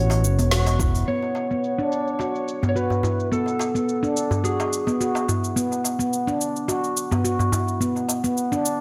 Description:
organic downtempo; 107 BPM; 4/4; swing 54% on 16ths; B dorian; A4 = 440 Hz
electric slide guitar; melody; 0.0-5.2 s; G#4 to C#5; -30 LUFS; equal; delay
handpan; arpeggios; 0.0-8.6 s; B3 to F#4; -26 LUFS; equal; low-pass filter, delay
smooth synth bass; bass; 0.0-1.0 s; E1 to A1; -22 LUFS; equal; tube saturation, sidechain pumping
deep house drum kit; drums; 0.1-8.8 s; cabasa, hi-hat, snare drum; -31 LUFS; equal; low-pass filter on hats, small room ambience, low-pass filter on snare, low-pass filter on perc
darbuka; percussion; 0.1-8.2 s; -29 LUFS; equal
electronic kick drum; drums; 0.8-0.9 s; -26 LUFS; equal; small room ambience
light reverb, digital ambience; -23 LUFS; mono
0.0-1.1 A section; 1.1-8.8 B section
band accent 0.5
0.0 A6; 1.1 B7(no3)

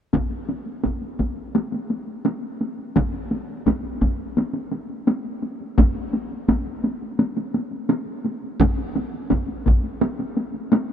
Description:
japanese traditional, taiko drum ensemble; 85 BPM; 4/4; straight
taiko ensemble; percussion; 0.1-10.9 s; -23 LUFS; right 1 dB
taiko ensemble; percussion; 0.1-9.8 s; -23 LUFS; equal
moderate huge ambient reverb, RT60 4.2 s; minimal, uncompressed stereo recording; -22 LUFS; side -8 dB against mid
0.1-10.9 A section

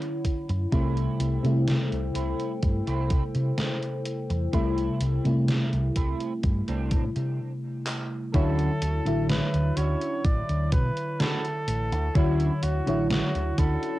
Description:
vaporwave; 63 BPM; 4/4; straight; A4 = 445 Hz
mellow FM electric piano; accompaniment; 0.0-14.0 s; C3 to E5; -28 LUFS; equal; wide subtle chorus, cassette tape
warbly tape-like pad; sustained chords; 0.0-7.4 s; E4 to G5; -36 LUFS; left 2 dB; chorus, built-in reverb, cassette tape
semi-hollow electric guitar; riff; 0.0-14.0 s; A3 to F#4; -37 LUFS; right 6 dB; analog chorus, cassette tape, analog delay
gated 80s digital drum machine; drums; 0.0-14.0 s; handclaps, hi-hat, snare drum; -31 LUFS; equal; gated reverb, gated reverb snare, overdrive, cassette tape
electronic kick drum; drums; 0.2-13.8 s; -24 LUFS; equal; overdrive, cassette tape
fingered electric bass; bass; 0.5-13.8 s; A1 to C3; -27 LUFS; equal
clear flugelhorn; melody; 8.3-14.0 s; E4 to D5; -32 LUFS; right 1 dB; cassette tape
little or no reverb; home recording on cassette; -24 LUFS; side -16 dB against mid
0.0-8.3 A section; 8.3-14.0 B section
break 7.4-8.3; drum fill 7.9-8.3; band accent 7.9-8.3
0.0 Dmaj9; 0.7 C6; 8.3 Dmaj9

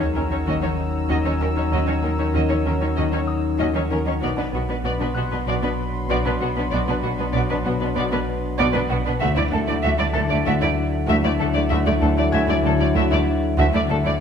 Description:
cinematic, suspense film score; 96 BPM; 4/4; straight; A4 = 440 Hz
muted studio violin section; melody; 0.0-14.1 s; F#4 to E5; -27 LUFS; left 1 dB
muted studio violin section; second line; 0.0-14.1 s; B3 to Gb4; -30 LUFS; right 1 dB
muted studio viola section; accompaniment; 0.0-14.1 s; A3 to Db4; -29 LUFS; right 1 dB
dark French horn section; sustained chords; 0.0-14.2 s; Gb3 to E4; -29 LUFS; left 2 dB
glass harmonica; sustained chords; 0.0-14.2 s; B3 to Gb5; -32 LUFS; equal
concert harp; riff; 0.0-14.2 s; B2 to Eb4; -27 LUFS; left 8 dB
muted studio cello section; bass; 0.0-14.1 s; D2 to Eb3; -28 LUFS; right 3 dB
sub bass with octave; drone; 0.0-14.2 s; B1 to Eb2; -26 LUFS; right 1 dB
sub drop; sound effects; 0.0-1.7 s; -36 LUFS; right 1 dB
felt-muted upright piano; texture; 0.0-14.2 s; Ab4 to A6; -36 LUFS; left 2 dB
muted studio violin section; texture; 0.0-8.9 s; Bb5 to Fb6; -34 LUFS; left 2 dB
muted studio double bass section; bass; 0.2-14.0 s; B1 to Eb2; -29 LUFS; right 4 dB
moderate scoring stage reverb, RT60 1.6 s; -19 LUFS; side -7 dB against mid
0.0-14.2 A section
impact 0.0-1.7
0.0 Ebm7; 4.2 Bm; 9.2 Dadd9

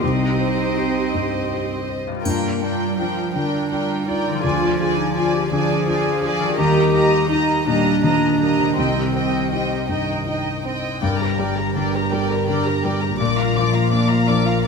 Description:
cinematic, emotional film score for orchestra; 55 BPM (dotted quarters); 6/8; rubato; C minor; A4 = 438 Hz
mellow clarinet; second line; 0.0-9.9 s; C4 to Ab4; -23 LUFS; right 1 dB
warm symphonic violin section; second line; 0.0-14.7 s; Bb4 to Bb5; -24 LUFS; left 1 dB
dark symphonic viola section; accompaniment; 0.0-14.6 s; Bb3 to D5; -27 LUFS; right 2 dB
felt-muted upright piano; accompaniment; 0.0-14.7 s; C2 to C5; -24 LUFS; left 2 dB
concert harp; arpeggios; 0.0-14.7 s; G2 to C5; -26 LUFS; left 7 dB
warm symphonic cello section; bass; 0.0-14.7 s; G2 to C4; -26 LUFS; right 5 dB
triangle; percussion; 2.3-3.7 s; -34 LUFS; right 1 dB
warm symphonic violin section; melody; 11.0-14.7 s; G5 to D6; -26 LUFS; left 3 dB
warm symphonic double bass section; bass; 11.0-14.7 s; G1 to Bb1; -25 LUFS; right 3 dB
moderate scoring stage reverb, RT60 2.1 s; -17 LUFS; side -5 dB against mid
0.0-11.0 A section; 11.0-14.7 B section
0.0 Cm; 2.2 Gm7; 4.4 Ddim; 6.6 Eb; 8.8 Cm; 11.0 Gm; 13.2 Bb

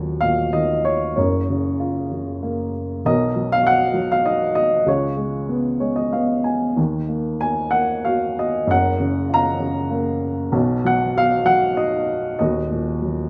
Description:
classical, lyrical solo piano; 96 BPM; 3/4; rubato; Eb minor; A4 = 440 Hz
dark upright piano; solo; 0.0-13.3 s; Eb1 to Bb5; -20 LUFS; equal
moderate recital hall reverb, RT60 1.4 s; -20 LUFS; mono
0.0-13.3 A section
upright piano fill 5.5-6.8
0.0 Ebm; 1.2 Gbmaj7; 3.0 Bmaj7; 4.9 Db7; 6.8 Ebm; 8.7 Gbmaj7; 10.5 B; 12.4 Ebm

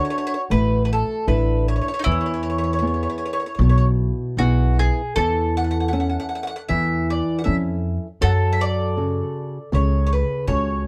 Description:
italian folk, Italian serenade; 78 BPM; 4/4; rubato; A major; A4 = 440 Hz
bowl-back mandolin; melody; 0.0-10.8 s; A4 to A5; -28 LUFS; equal
mandolin; second line; 0.0-10.9 s; D#4 to A4; -30 LUFS; equal
flamenco guitar; accompaniment; 0.0-10.9 s; B2 to A4; -28 LUFS; equal
upright bass; bass; 0.5-10.9 s; A1 to F#2; -23 LUFS; equal
light reverb; dark, warm production; -21 LUFS; mono
0.0-10.9 A section
0.0 Dsus2; 2.1 E; 5.2 A/E; 8.2 F#m

